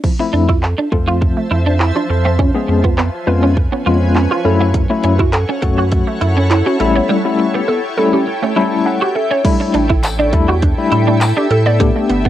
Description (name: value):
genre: dance-pop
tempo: 102 BPM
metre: 4/4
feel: straight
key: unclear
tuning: A4 = 439 Hz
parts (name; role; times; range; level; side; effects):
- mellow tine electric piano; accompaniment; 0.0-12.2 s; F3 to A5; -16 LUFS; left 5 dB; medium tremolo, sidechain pumping, cassette tape
- shimmering ambient pad; sustained chords; 1.1-12.3 s; F3 to A5; -23 LUFS; left 1 dB; chorus, built-in reverb, sidechain pumping, cassette tape
- hollow square pluck; arpeggios; 0.0-12.2 s; F3 to E5; -20 LUFS; right 3 dB; chorus, sidechain pumping, cassette tape, tape echo
- house drum kit; drums; 0.0-12.3 s; crash cymbal, handclaps, hi-hat, kick drum; -16 LUFS; equal; cassette tape
- clean electric guitar; riff; 0.2-12.3 s; A3 to F#4; -19 LUFS; right 3 dB; ensemble chorus, cassette tape
- saturated sub bass; bass; 0.3-12.3 s; G1 to A2; -16 LUFS; right 1 dB; sidechain pumping
- tambourine; percussion; 10.0-11.4 s; none; -28 LUFS; left 6 dB; none
room: little or no reverb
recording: home recording on cassette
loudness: -12 LUFS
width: side -12 dB against mid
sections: 0.0-9.4 A section; 9.4-12.3 B section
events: tine electric piano fill 8.3-9.4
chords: 0.0 Fmaj7; 2.4 C#7/E#; 4.4 F#m7; 6.8 A7; 9.4 A7sus4